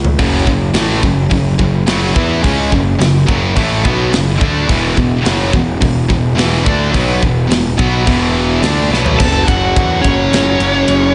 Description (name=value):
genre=heavy metal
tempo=106 BPM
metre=4/4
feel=straight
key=F# minor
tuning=A4 = 440 Hz
part: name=fuzz picked electric bass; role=bass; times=0.0-11.1 s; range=E1 to E2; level=-20 LUFS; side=equal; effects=overdrive
part: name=modern studio drum kit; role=drums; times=0.0-11.0 s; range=crash cymbal, hi-hat, kick drum, ride cymbal, snare drum, toms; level=-19 LUFS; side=equal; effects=none
part: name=heavy high-gain guitar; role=riff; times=0.2-11.1 s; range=E2 to E4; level=-19 LUFS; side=equal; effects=distortion, slapback echo
part: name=heavy high-gain guitar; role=riff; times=0.2-9.2 s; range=E2 to E4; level=-19 LUFS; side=equal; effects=distortion, slapback echo
part: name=high-gain lead guitar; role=melody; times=9.2-11.1 s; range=C#5 to A5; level=-18 LUFS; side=equal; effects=distortion, tape echo
part: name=high-gain lead guitar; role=second line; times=9.2-11.1 s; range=C#4 to A4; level=-20 LUFS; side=equal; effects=distortion, slapback echo
room=moderate lush hall reverb, RT60 1.7 s, small room ambience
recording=big arena sound, nothing above 10.3 kHz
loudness=-13 LUFS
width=mono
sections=0.0-9.2 A section; 9.2-11.1 B section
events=drum fill 0.0, 8.9; half time 9.2-11.1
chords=0.0 F#m; 4.7 E5; 9.2 F#m